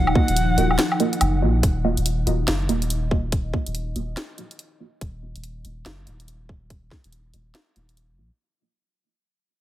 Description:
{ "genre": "deep dubstep", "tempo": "142 BPM", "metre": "4/4", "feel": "swing 61% on 16ths, half-time", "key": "Eb minor", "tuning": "A4 = 440 Hz", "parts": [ { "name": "breathy bright ney", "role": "melody", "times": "0.0-1.4 s", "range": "Gb5", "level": "-28 LUFS", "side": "right 1 dB", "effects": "dub echo" }, { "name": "deep dark ambient pad", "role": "sustained chords", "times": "0.0-8.4 s", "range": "F3 to Eb5", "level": "-29 LUFS", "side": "left 2 dB", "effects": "chorus, built-in reverb" }, { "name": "soft dub sub bass", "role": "bass", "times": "0.0-8.3 s", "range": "Eb1 to Bb1", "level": "-23 LUFS", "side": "equal", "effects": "none" }, { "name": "garage drum kit", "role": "drums", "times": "0.1-8.1 s", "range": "hi-hat, snare drum, woodblock", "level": "-25 LUFS", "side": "left 1 dB", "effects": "studio reverb" }, { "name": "filtered dub chord stab", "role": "stabs", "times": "0.2-8.4 s", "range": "Bb3 to Eb5", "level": "-26 LUFS", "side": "right 3 dB", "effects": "phaser, lush chorus, dub echo" }, { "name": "electronic kick drum", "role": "drums", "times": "0.2-7.0 s", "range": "none", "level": "-21 LUFS", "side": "equal", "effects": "studio reverb" } ], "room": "light reverb", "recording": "heavily compressed radio sound", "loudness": "-19 LUFS", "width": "side -13 dB against mid", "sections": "0.0-8.4 A section", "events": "fade-out 0.0-8.4", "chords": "0.0 Ebmadd9" }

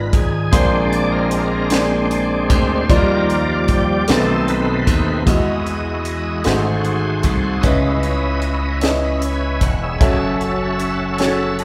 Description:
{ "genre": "slow gospel", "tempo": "51 BPM (dotted quarters)", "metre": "6/8", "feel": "straight", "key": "E major from 5.3 s", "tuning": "A4 = 440 Hz", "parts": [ { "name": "dark baby grand piano", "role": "accompaniment", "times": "0.0-11.6 s", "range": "Ab2 to A5", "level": "-23 LUFS", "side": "equal", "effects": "none" }, { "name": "bright tonewheel organ", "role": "sustained chords", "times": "0.0-11.6 s", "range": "D#3 to B5", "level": "-23 LUFS", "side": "equal", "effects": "slow rotary speaker, overdrive, chorus vibrato" }, { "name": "glassy slap bass", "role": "bass", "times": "0.0-11.6 s", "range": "E1 to E2", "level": "-24 LUFS", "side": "equal", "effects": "none" }, { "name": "crisp fusion drum kit", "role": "drums", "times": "0.1-11.6 s", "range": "hi-hat, kick drum, snare drum", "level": "-21 LUFS", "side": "equal", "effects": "none" } ], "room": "moderate concert hall reverb, RT60 2.3 s", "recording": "recorded in a church or concert hall", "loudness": "-17 LUFS", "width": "mono", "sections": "0.0-5.3 A section; 5.3-11.6 B section", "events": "tonewheel organ solo 0.0-5.3", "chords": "0.0 Abm6; 0.5 Bb9; 2.9 Ebmaj9; 4.1 B7b9; 5.3 Emaj9; 6.5 G#7b9; 7.6 C#m9; 10.0 F#m7" }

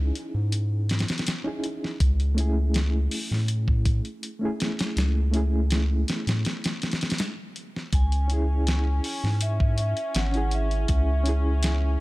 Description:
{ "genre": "trip hop", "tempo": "81 BPM", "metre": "4/4", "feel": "straight", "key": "C# minor", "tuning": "A4 = 440 Hz", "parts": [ { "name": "reed electric piano", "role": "accompaniment", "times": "0.0-12.0 s", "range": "A3 to G#4", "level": "-32 LUFS", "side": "equal", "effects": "fast tremolo, tape echo" }, { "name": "round analog bass", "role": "bass", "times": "0.0-12.0 s", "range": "G#1 to A2", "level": "-23 LUFS", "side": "equal", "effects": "none" }, { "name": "dusty soul sampler-style drum kit", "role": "drums", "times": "0.2-11.8 s", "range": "hi-hat, kick drum, snare drum", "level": "-27 LUFS", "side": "equal", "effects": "small room ambience" }, { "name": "vibraphone with soft mallets", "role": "melody", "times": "7.9-12.0 s", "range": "E5 to G#5", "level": "-33 LUFS", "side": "right 2 dB", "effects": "tape echo" }, { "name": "warm studio string section", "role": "sustained chords", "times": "7.9-12.0 s", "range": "C#4", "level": "-37 LUFS", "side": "left 3 dB", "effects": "vintage 12-bit sampler grit" } ], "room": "digital ambience", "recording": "none", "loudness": "-23 LUFS", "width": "side -20 dB against mid", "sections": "0.0-12.0 A section", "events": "filter sweep on reed electric piano 0.0-12.0; break 6.5-7.9", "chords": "0.0 C#madd9; 2.0 Amaj7/C#; 7.9 C#m" }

